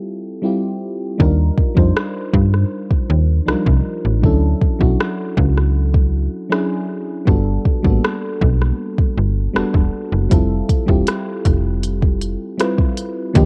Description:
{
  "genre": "contemporary R&B",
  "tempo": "79 BPM",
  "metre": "4/4",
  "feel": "straight",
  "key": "unclear",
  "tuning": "A4 = 440 Hz",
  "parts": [
    { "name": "mellow FM electric piano", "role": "accompaniment", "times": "0.0-13.5 s", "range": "F3 to C5", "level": "-24 LUFS", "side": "equal", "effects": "chorus" },
    { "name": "slap-like FM bass", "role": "bass", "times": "1.2-13.5 s", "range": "E1 to G2", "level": "-18 LUFS", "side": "equal", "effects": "none" },
    { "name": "smooth R&B drum kit", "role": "drums", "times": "1.2-13.5 s", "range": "hi-hat, kick drum, rim click", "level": "-19 LUFS", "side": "equal", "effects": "none" }
  ],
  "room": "little or no reverb",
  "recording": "home recording on cassette",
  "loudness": "-17 LUFS",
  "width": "mono",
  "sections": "0.0-13.3 A section",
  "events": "none",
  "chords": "0.0 Fmaj9; 1.2 Ebmaj9; 4.2 Dmaj9; 7.3 Gmaj9; 10.3 Fmaj9",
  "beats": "0.44 | 1.20 1.96 2.72 3.48 | 4.24 5.00 5.75 6.51 | 7.27 8.03 8.79 9.55 | 10.31 11.07 11.83 12.59 | 13.35"
}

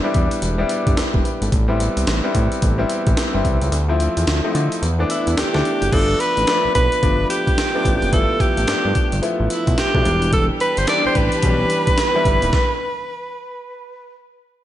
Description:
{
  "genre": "R&B, new jack swing",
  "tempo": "109 BPM",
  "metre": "4/4",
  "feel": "swing 62% on 16ths",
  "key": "unclear",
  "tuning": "A4 = 440 Hz",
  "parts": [
    { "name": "warm grand piano", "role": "accompaniment", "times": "0.0-12.6 s", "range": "E3 to D5", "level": "-22 LUFS", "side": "left 2 dB", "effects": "slapback echo" },
    { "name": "fat analog bass", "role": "bass", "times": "0.1-12.5 s", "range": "D#1 to D3", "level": "-20 LUFS", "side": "equal", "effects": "none" },
    { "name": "breakbeat sampler-style drum kit", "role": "drums", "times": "0.1-12.7 s", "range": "crash cymbal, hi-hat, kick drum, snare drum", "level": "-21 LUFS", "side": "equal", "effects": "none" },
    { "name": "bright alto saxophone", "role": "melody", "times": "5.1-14.2 s", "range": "E4 to D5", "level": "-20 LUFS", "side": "equal", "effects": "slapback echo" },
    { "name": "warm symphonic string section", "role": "sustained chords", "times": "10.3-12.5 s", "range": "E3 to G4", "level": "-27 LUFS", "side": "equal", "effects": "none" }
  ],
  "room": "moderate recital hall reverb, RT60 1.3 s",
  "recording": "big arena sound, nothing above 11.0 kHz",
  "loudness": "-16 LUFS",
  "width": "side -12 dB against mid",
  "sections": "0.0-5.9 A section; 5.9-14.6 B section",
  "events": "kick muted 3.7-5.9; stop 12.5-14.6",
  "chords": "0.0 Em7; 1.5 Am7; 3.7 Dm7; 4.8 E7sus4; 5.9 G9; 10.1 Em7",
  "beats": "0.42 0.97 | 1.52 2.07 2.62 3.17 | 3.72 4.27 4.82 5.37 | 5.92 6.47 7.03 7.58 | 8.13 8.68 9.23 9.78 | 10.33 10.88 11.43 11.98 | 12.53 13.08 13.63 14.18"
}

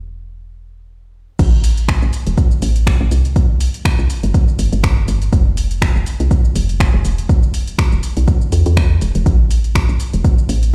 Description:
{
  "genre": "deep house",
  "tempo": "122 BPM",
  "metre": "4/4",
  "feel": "swing 56% on 16ths",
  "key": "A minor",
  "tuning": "A4 = 440 Hz",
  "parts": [
    { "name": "woody FM bass", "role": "bass", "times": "0.0-10.7 s", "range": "E1 to E2", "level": "-18 LUFS", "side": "equal", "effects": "sidechain pumping" },
    { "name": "deep house drum kit", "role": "drums", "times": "1.4-10.7 s", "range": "crash cymbal, finger snaps, hi-hat, shaker", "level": "-28 LUFS", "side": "equal", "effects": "overdrive" },
    { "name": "electronic kick drum", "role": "drums", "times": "1.4-10.4 s", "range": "none", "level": "-16 LUFS", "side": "equal", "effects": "overdrive" }
  ],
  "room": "little or no reverb",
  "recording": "played on a big sound system in a bare room, large studio reverb",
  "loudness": "-15 LUFS",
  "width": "mono",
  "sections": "0.0-1.4 A section; 1.4-10.7 B section",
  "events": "drop 1.4-10.7",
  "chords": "none",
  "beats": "0.41 0.90 | 1.39 1.88 2.38 2.87 | 3.36 3.85 4.34 4.83 | 5.33 5.82 6.31 6.80 | 7.29 7.79 8.28 8.77 | 9.26 9.75 10.24 10.74"
}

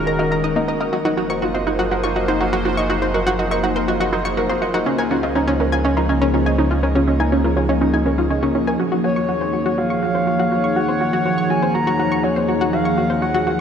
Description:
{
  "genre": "ambient, sequencer-driven space music",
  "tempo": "122 BPM",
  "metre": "4/4",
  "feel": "straight",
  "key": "unclear",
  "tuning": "A4 = 440 Hz",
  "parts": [
    { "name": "sweeping resonant pad", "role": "sustained chords", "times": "0.0-13.6 s", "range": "Eb2 to Db5", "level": "-21 LUFS", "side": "equal", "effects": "chorus, shimmer reverb" },
    { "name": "warm sub bass", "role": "bass", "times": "0.0-8.8 s", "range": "Eb1 to Db2", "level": "-24 LUFS", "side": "equal", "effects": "none" },
    { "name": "warbly dusty pluck", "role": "arpeggios", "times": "0.1-8.7 s", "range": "Bb3 to Eb5", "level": "-23 LUFS", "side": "equal", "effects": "chorus, auto-pan, shimmer reverb, tape echo" },
    { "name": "analog pluck", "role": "riff", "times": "0.1-13.5 s", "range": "Db4 to Db6", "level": "-21 LUFS", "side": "equal", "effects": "chorus, shimmer reverb, tape echo" },
    { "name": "breathy flute-like synth lead", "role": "melody", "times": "9.0-13.6 s", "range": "Db5 to Bb5", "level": "-21 LUFS", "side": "equal", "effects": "chorus, shimmer reverb, tape echo" }
  ],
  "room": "wet plate reverb, RT60 3.3 s",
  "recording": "dreamy mix soaked in reverb",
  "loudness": "-16 LUFS",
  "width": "side -8 dB against mid",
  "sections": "0.0-8.8 A section; 8.8-13.6 B section",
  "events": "none",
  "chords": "0.0 Ebm; 0.9 Gb; 4.9 Db; 8.8 Gbmaj7/Eb",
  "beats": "0.44 | 0.93 1.42 1.91 2.40 | 2.90 3.39 3.88 4.37 | 4.86 5.36 5.85 6.34 | 6.83 7.32 7.81 8.31 | 8.80 9.29 9.78 10.27 | 10.77 11.26 11.75 12.24 | 12.73 13.22"
}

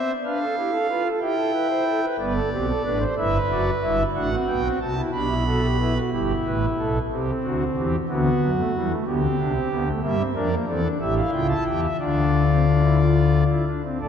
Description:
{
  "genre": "classical, baroque-style 4-part fugue for pipe organ",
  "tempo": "61 BPM (dotted quarters)",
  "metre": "6/8",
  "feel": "straight",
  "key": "D minor from 10.0 s",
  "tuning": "A4 = 439 Hz",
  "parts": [
    { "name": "pipe organ, foundations", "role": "solo", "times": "0.0-14.1 s", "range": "F#1 to B5", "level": "-20 LUFS", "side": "equal", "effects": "none" }
  ],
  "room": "wet church reverb, RT60 2.8 s",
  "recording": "dark, warm production",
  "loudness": "-20 LUFS",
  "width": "side -8 dB against mid",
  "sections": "0.0-6.1 A section; 6.1-14.0 B section",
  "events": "none",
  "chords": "0.2 Bdim/D; 1.2 C/E; 2.2 G; 4.1 F#dim/A; 5.1 G/B; 6.1 Em/G; 7.1 Cadd9; 8.1 D; 9.1 G; 10.0 Em7b5; 11.0 A7; 12.0 Dm",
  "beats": "| 0.25 1.22 | 2.19 3.17 | 4.15 5.13 | 6.12 7.11 | 8.08 9.06 | 10.02 10.99 | 11.99 13.00 | 14.01"
}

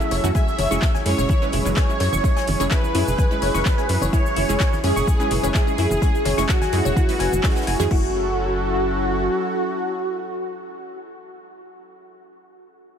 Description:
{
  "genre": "progressive house",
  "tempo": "127 BPM",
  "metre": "4/4",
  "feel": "straight",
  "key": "F# minor",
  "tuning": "A4 = 440 Hz",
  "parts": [
    { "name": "soft supersaw", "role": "melody", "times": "0.0-11.0 s", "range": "F#4 to E5", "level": "-25 LUFS", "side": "right 1 dB", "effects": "dub echo" },
    { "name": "warm analog pad", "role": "sustained chords", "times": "0.0-11.0 s", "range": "F#3 to A4", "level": "-30 LUFS", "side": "equal", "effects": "chorus, sidechain pumping" },
    { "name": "wide unison pluck", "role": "stabs", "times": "0.0-11.0 s", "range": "G#3 to B4", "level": "-28 LUFS", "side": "right 3 dB", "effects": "sidechain pumping, dub echo" },
    { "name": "deep house drum kit", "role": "drums", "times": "0.0-8.0 s", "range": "crash cymbal, handclaps, hi-hat, shaker", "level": "-30 LUFS", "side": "left 2 dB", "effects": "overdrive" },
    { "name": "glassy wavetable pluck", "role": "arpeggios", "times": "0.1-8.1 s", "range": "E4 to C#6", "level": "-29 LUFS", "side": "left 3 dB", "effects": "chorus, cassette tape, sidechain pumping, dub echo" },
    { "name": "tight sequencer bass", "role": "bass", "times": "0.1-9.3 s", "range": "F#1 to F#2", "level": "-24 LUFS", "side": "equal", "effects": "tube saturation, sidechain pumping" },
    { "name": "natural country drum kit", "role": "drums", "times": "0.1-7.9 s", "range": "hi-hat, snare drum", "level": "-37 LUFS", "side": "left 3 dB", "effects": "none" },
    { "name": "bongos and congas", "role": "percussion", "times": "0.1-7.9 s", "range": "none", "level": "-32 LUFS", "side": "right 2 dB", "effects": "none" },
    { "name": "electronic kick drum", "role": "drums", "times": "0.3-8.0 s", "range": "none", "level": "-20 LUFS", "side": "equal", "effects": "overdrive" }
  ],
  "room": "digital ambience",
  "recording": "none",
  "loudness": "-18 LUFS",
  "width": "side -8 dB against mid",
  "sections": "0.0-7.9 A section; 7.9-11.7 B section",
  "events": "drop 0.0-7.9",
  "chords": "0.3 C#m/F#; 7.9 F#m7",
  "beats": "| 0.35 0.82 1.29 1.77 | 2.24 2.71 3.18 3.66 | 4.13 4.60 5.07 5.55 | 6.02 6.49 6.96 7.44 | 7.91 8.38 8.85 9.33 | 9.80 10.27 10.74"
}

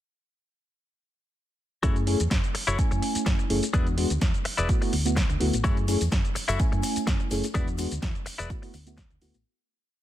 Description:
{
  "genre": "filtered disco house",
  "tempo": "126 BPM",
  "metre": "4/4",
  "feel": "swing 53% on 16ths",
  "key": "F# minor",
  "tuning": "A4 = 441 Hz",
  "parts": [
    { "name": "reed electric piano", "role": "accompaniment", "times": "1.8-9.4 s", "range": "G#3 to G#5", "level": "-29 LUFS", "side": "equal", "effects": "fast tremolo, phaser, sidechain pumping" },
    { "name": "direct-recorded clean electric guitar", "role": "riff", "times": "1.8-9.1 s", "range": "E4 to E5", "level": "-32 LUFS", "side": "left 3 dB", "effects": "sidechain pumping" },
    { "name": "fingered electric bass", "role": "bass", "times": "1.8-9.4 s", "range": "E1 to F#2", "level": "-29 LUFS", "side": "equal", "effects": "sidechain pumping" },
    { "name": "electronic kick drum", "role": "drums", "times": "1.8-9.1 s", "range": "none", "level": "-26 LUFS", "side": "equal", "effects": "none" },
    { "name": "punchy analog drum machine", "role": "drums", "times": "1.8-9.4 s", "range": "hi-hat, shaker, snare drum", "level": "-32 LUFS", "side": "equal", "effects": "sidechain pumping on hats, sidechain pumping on perc" },
    { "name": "tube shaker", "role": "percussion", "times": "5.6-9.4 s", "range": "none", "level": "-42 LUFS", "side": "left 8 dB", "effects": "sidechain pumping on perc" }
  ],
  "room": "digital ambience",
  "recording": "none",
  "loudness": "-23 LUFS",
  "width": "side -13 dB against mid",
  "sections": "1.8-9.5 drop",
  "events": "drop 1.8-9.5; fade-out 6.9-9.5",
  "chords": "1.8 F#m7; 3.7 E7; 4.7 D69; 5.6 F#m7; 7.5 E7; 8.5 D69",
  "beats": "| 1.83 2.31 2.79 3.26 | 3.74 4.21 4.69 5.17 | 5.64 6.12 6.60 7.07 | 7.55 8.03 8.50 8.98"
}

